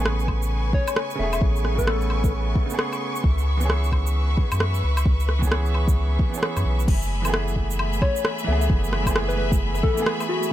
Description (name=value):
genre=future garage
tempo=132 BPM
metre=4/4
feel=swing 61% on 16ths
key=F# minor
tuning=A4 = 441 Hz
part: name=bright upright piano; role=accompaniment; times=0.0-10.5 s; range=C#3 to A4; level=-30 LUFS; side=right 4 dB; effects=vintage 12-bit sampler grit, sidechain pumping, low-pass filter, digital delay
part: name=bright symphonic string section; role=sustained chords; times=0.0-10.5 s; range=A3 to C#6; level=-31 LUFS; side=left 1 dB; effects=sidechain pumping
part: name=soft dub sub bass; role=bass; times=0.0-9.8 s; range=E1 to F#2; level=-23 LUFS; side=equal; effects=none
part: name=organic electronic drum kit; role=drums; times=0.1-10.5 s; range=crash cymbal, rim click, shaker, woodblock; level=-27 LUFS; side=equal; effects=none
part: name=electronic kick drum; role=drums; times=0.3-9.9 s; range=none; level=-22 LUFS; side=equal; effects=none
part: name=soft struck synth lead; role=melody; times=0.7-2.3, 8.0-10.5 s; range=F#4 to E5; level=-29 LUFS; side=left 4 dB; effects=chorus, ping-pong delay
room=little or no reverb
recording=none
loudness=-20 LUFS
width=side -13 dB against mid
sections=0.0-6.9 A section; 6.9-10.5 B section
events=none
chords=0.0 Amaj9; 3.2 C#m7; 6.9 F#m11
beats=0.06 0.52 0.97 | 1.43 1.88 2.34 2.79 | 3.25 3.70 4.15 4.61 | 5.06 5.52 5.97 6.43 | 6.88 7.34 7.79 8.24 | 8.70 9.15 9.61 10.06 | 10.52